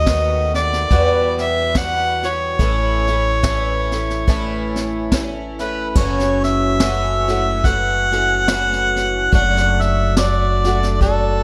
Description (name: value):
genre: acoustic folk duo or small band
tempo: 71 BPM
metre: 4/4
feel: swing 57% on 8ths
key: unclear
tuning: A4 = 440 Hz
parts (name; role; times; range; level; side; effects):
- rich fiddle; melody; 0.0-5.1 s; C#5 to F#5; -22 LUFS; equal; none
- picked twelve-string acoustic guitar; accompaniment; 0.0-11.4 s; E2 to F#4; -25 LUFS; equal; lush chorus
- upright bass; bass; 0.0-11.4 s; F#1 to E2; -24 LUFS; equal; none
- vintage brush drum kit; drums; 0.1-11.2 s; crash cymbal, kick drum, snare drum; -22 LUFS; equal; none
- warm harmonica; second line; 5.6-11.4 s; A4 to F#5; -21 LUFS; equal; tape echo
room: light reverb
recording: close, detailed microphones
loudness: -18 LUFS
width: mono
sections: 0.0-6.0 A section; 6.0-11.4 B section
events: harmonica solo 6.0-11.4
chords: 0.0 B7/D#; 0.9 Emadd9; 2.6 A; 6.0 F#m7; 9.3 D/F#